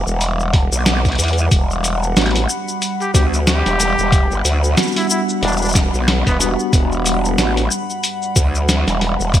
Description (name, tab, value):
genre	glitch hop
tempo	92 BPM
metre	4/4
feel	swing 58% on 16ths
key	E minor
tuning	A4 = 440 Hz
part	dark analog pad	sustained chords	0.0-9.4 s	G3 to D6	-24 LUFS	right 1 dB	chorus, phaser, sidechain pumping
part	growl bass	bass	0.0-9.4 s	E1 to E2	-18 LUFS	equal	chorus
part	boom bap sampler-style drum kit	drums	0.1-9.4 s	hi-hat, shaker, snare drum	-19 LUFS	left 1 dB	gated reverb
part	electronic kick drum	drums	0.5-9.4 s	none	-15 LUFS	equal	none
part	mellow tine electric piano	stabs	2.2-7.6 s	G3 to F#4	-23 LUFS	equal	medium stereo tremolo, vintage 12-bit sampler grit, sidechain pumping, ping-pong delay
part	breathy trumpet	melody	3.0-6.5 s	B3 to G4	-23 LUFS	left 1 dB	vintage 12-bit sampler grit, ping-pong delay
room	light reverb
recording	bright 1980s-style digital production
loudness	-14 LUFS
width	side -11 dB against mid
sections	0.0-9.4 A section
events	none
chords	0.0 Em9